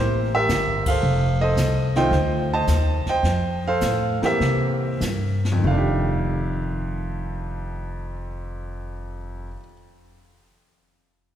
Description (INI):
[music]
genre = jazz piano trio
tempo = 94-111 BPM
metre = 4/4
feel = swing 69% on 8ths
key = F mixolydian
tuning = A4 = 443 Hz
[part]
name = clear grand piano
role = melody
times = 0.0-9.7 s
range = F2 to A5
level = -23 LUFS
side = right 1 dB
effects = none
[part]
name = upright bass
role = bass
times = 0.0-9.5 s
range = F1 to C3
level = -24 LUFS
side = equal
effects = none
[part]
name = jazz brush drum kit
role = drums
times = 0.5-6.2 s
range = brushed snare drum, hi-hat, kick drum, ride cymbal, snare drum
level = -31 LUFS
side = left 2 dB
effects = none
[sound]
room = wet church reverb, RT60 2.8 s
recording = recorded in a church or concert hall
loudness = -20 LUFS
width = side -10 dB against mid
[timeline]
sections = 0.0-5.6 A section; 5.6-10.7 B section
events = band accent 0.8; slowing down 1.0-5.6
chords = 0.0 C7; 1.0 F7; 4.4 C7; 5.6 F13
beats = 0.49 | 1.03 1.57 2.12 2.68 | 3.24 3.82 4.41 5.01 | 5.64 6.28 6.91 7.55 | 8.18 8.82 9.46